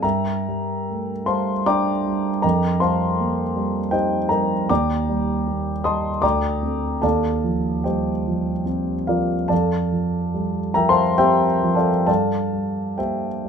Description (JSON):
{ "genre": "classical, impressionist solo piano", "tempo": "64-81 BPM", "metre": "3/4", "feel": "rubato", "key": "unclear", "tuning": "A4 = 440 Hz", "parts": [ { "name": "warm concert grand piano", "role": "solo", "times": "0.0-13.5 s", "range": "D2 to Eb6", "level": "-19 LUFS", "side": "equal", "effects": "none" } ], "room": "light reverb", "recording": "close, detailed microphones", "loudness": "-19 LUFS", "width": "side -6 dB against mid", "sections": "0.0-13.5 A section", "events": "none", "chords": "0.0 Gmadd9; 2.4 F9sus4; 4.7 Ebmaj7; 6.2 D7sus4; 7.0 Eb69; 9.5 Fadd9; 12.1 Gm7", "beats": "| 0.03 0.87 1.66 | 2.43 3.18 3.93 | 4.69 5.47 6.23 | 7.03 7.86 8.68 | 9.51 10.35 11.19 | 12.08 13.00" }